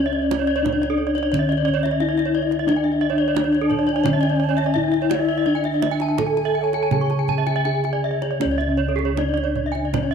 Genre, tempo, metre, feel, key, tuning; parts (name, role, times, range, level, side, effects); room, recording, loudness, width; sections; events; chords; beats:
Balinese gamelan; 79-88 BPM; 4/4; straight; C# pelog; A4 = 441 Hz
gamelan-type bronze metallophone; melody; 0.0-10.1 s; C#4 to A4-20c; -22 LUFS; left 2 dB; slapback echo
gamelan-type bronze metallophone; arpeggios; 0.0-10.1 s; A4-20c to A5-20c; -27 LUFS; left 10 dB
gamelan-type bossed gongs; bass; 0.0-10.1 s; C#2 to D4+20c; -24 LUFS; right 1 dB
gamelan-type bronze metallophone; arpeggios; 0.1-10.1 s; G#4-30c to C#6; -27 LUFS; right 11 dB
kendang; percussion; 0.3-10.1 s; -30 LUFS; right 10 dB
breathy bass bansuri; second line; 3.7-7.7 s; C#5 to A5; -30 LUFS; right 10 dB
moderate echo chamber reverb, RT60 1.9 s; 1960s-style stereo with parts hard left and right; -18 LUFS; side -7 dB against mid
0.0-8.4 A section; 8.4-10.1 B section
0.65 1.32 2.00 | 2.68 3.36 4.05 4.76 | 5.47 6.19 6.92 7.66 | 8.42 9.18 9.94